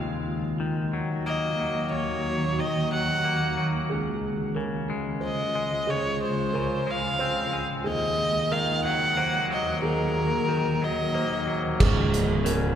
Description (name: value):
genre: post-rock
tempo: 61 BPM (dotted quarters)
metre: 6/8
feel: straight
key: unclear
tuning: A4 = 441 Hz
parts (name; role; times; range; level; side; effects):
- granular cloud pad; sustained chords; 0.0-12.8 s; Db2 to Gb4; -32 LUFS; equal; built-in reverb
- twangy electric guitar; arpeggios; 0.0-12.8 s; Db2 to C4; -29 LUFS; left 2 dB; none
- warm violin; melody; 1.3-11.6 s; Bb4 to Gb5; -28 LUFS; right 1 dB; none
- felt-muted upright piano; arpeggios; 3.9-12.8 s; Ab4 to C5; -33 LUFS; right 2 dB; none
- fuzz fingered electric bass; bass; 11.8-12.8 s; Db1; -25 LUFS; right 1 dB; overdrive
- loose indie drum kit; drums; 11.8-12.6 s; crash cymbal, hi-hat, kick drum; -24 LUFS; right 1 dB; none
room: wet cathedral reverb, RT60 4.7 s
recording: recorded in a church or concert hall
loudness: -24 LUFS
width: side -9 dB against mid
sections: 0.0-11.8 A section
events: none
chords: 0.0 Ebm; 3.9 Dbmaj7; 7.9 Ebm; 11.8 Db